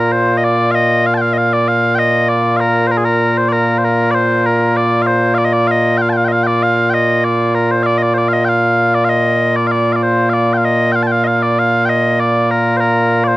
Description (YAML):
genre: scottish traditional, Scottish pipe music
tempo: 97 BPM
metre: 4/4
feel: straight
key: Bb major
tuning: A4 = 440 Hz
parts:
  - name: mellow small bagpipes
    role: solo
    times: 0.0-13.4 s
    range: Bb2 to A5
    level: -11 LUFS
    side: equal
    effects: none
room: little or no reverb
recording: dry, close 1970s-style studio recording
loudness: -11 LUFS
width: side -18 dB against mid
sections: 0.4-13.4 A section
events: none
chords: none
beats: | 0.44 1.06 1.67 2.29 | 2.91 3.53 4.15 4.77 | 5.39 6.00 6.62 7.24 | 7.86 8.48 9.10 9.71 | 10.33 10.95 11.57 12.19 | 12.81